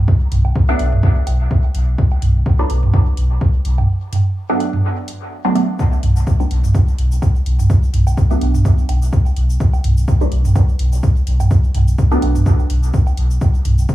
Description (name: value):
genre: dub techno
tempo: 126 BPM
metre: 4/4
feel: swing 55% on 16ths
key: B minor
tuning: A4 = 442 Hz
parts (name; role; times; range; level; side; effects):
- filtered dub chord stab; stabs; 0.0-12.4 s; F#3 to D4; -22 LUFS; right 2 dB; phaser, sidechain pumping, dub echo
- pure sine sub bass; bass; 0.0-13.9 s; B1; -14 LUFS; equal; sidechain pumping
- electronic kick drum; drums; 0.1-13.9 s; none; -14 LUFS; equal; none
- electronic hi-hat and shaker; drums; 0.3-13.9 s; none; -37 LUFS; left 2 dB; dub echo
- electronic toms and woodblock; percussion; 0.3-13.8 s; none; -21 LUFS; right 2 dB; sidechain pumping on toms, sidechain pumping on perc, dub echo
room: little or no reverb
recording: echo-heavy mix, studio ambience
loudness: -13 LUFS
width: side -15 dB against mid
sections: 0.0-13.9 A section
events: break 3.9-5.8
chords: 0.0 Bm7